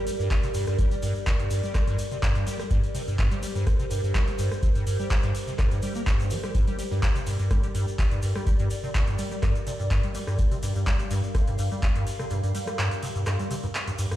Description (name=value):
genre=acid house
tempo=125 BPM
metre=4/4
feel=swing 53% on 16ths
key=G minor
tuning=A4 = 440 Hz
part: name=warbly tape-like pad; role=sustained chords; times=0.0-14.2 s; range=G3 to F5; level=-34 LUFS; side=equal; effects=chorus, built-in reverb, sidechain pumping
part: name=acid bass, square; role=riff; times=0.0-14.2 s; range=G2 to Bb3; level=-28 LUFS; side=equal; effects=ensemble chorus, tape echo
part: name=electro analog drum machine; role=drums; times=0.1-14.2 s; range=handclaps, hi-hat, ride cymbal, rim click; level=-34 LUFS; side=right 1 dB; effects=overdrive
part: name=tube shaker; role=percussion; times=0.1-14.2 s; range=none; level=-44 LUFS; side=left 4 dB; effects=none
part: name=electronic kick drum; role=drums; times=0.3-11.9 s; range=none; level=-25 LUFS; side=equal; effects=overdrive
room=light reverb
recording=played on a big sound system in a bare room, large studio reverb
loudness=-23 LUFS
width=side -14 dB against mid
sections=0.0-14.2 A section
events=break 12.3-14.2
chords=0.0 Gm